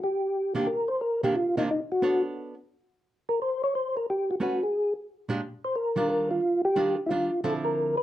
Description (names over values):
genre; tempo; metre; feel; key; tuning
jazz; 178 BPM; 4/4; swing 64% on 8ths; unclear; A4 = 439 Hz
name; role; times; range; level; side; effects
percussive tonewheel organ; melody; 0.0-8.0 s; Eb4 to C#5; -25 LUFS; equal; slow rotary speaker, chorus vibrato, plate reverb
archtop guitar, miked and amplified; accompaniment; 0.5-8.0 s; Bb2 to C#5; -30 LUFS; right 2 dB; none
room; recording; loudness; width
wet club reverb, RT60 0.6 s; none; -25 LUFS; side -13 dB against mid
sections
0.7-8.0 A section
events
none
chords
0.0 Cm9; 2.0 Bm9; 2.7 N.C.; 3.4 A69; 4.7 Bb7; 5.4 Ebmaj9; 7.4 Dm9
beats
0.00 0.33 | 0.67 1.01 1.35 1.69 | 2.02 2.36 2.70 3.04 | 3.38 3.71 4.05 4.39 | 4.73 5.07 5.40 5.74 | 6.08 6.42 6.75 7.09 | 7.43 7.77